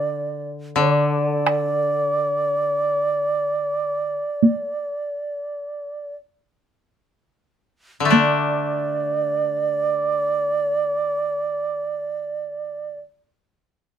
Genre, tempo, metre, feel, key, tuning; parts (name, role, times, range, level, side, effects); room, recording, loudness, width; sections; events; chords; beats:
japanese traditional, Japanese chamber music; 31-46 BPM; 4/4; rubato; A4 = 440 Hz
bright reedy long shakuhachi; melody; 0.0-13.0 s; D5; -22 LUFS; right 3 dB
koto; accompaniment; 0.0-13.0 s; D3 to D4; -23 LUFS; left 3 dB
taiko ensemble; percussion; 1.5-9.0 s; -16 LUFS; right 1 dB
light reverb; minimal, uncompressed stereo recording; -20 LUFS; side -9 dB against mid
0.0-8.1 A section; 8.1-14.0 B section
slowing down 0.0-8.1
0.09 | 1.46 2.88 4.42 6.18 | 8.11 9.99 11.82